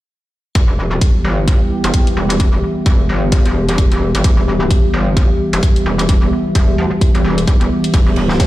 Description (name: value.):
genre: bass house.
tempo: 130 BPM.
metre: 4/4.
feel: swing 58% on 16ths.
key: E minor.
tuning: A4 = 440 Hz.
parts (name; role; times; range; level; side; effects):
sweeping resonant pad; sustained chords; 0.6-8.5 s; E3 to B4; -19 LUFS; left 1 dB; chorus, sidechain pumping.
metallic wobble bass; bass; 0.6-8.4 s; E1 to D2; -18 LUFS; equal; chorus, tube saturation, sidechain pumping.
electronic hi-hat; drums; 0.6-8.5 s; none; -25 LUFS; left 1 dB; small room ambience.
electronic kick drum; drums; 0.6-8.5 s; none; -12 LUFS; equal; small room ambience.
warbly tape-like pad; texture; 1.1-8.5 s; B3 to E5; -23 LUFS; right 1 dB; chorus, built-in reverb, phaser, sidechain pumping.
deep reggae drum kit; drums; 7.9-8.5 s; hi-hat, ride cymbal, snare drum; -23 LUFS; equal; sidechain pumping on cymbals, high-pass filter on cymbals, small room ambience, sidechain pumping on hats, high-pass filter on hats, high-pass filter on snare, high-pass filter on room.
room: light reverb.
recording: played on a big sound system in a bare room, stone room reverb.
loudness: -12 LUFS.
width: side -16 dB against mid.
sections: 0.6-8.5 A section.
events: none.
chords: 0.6 Em.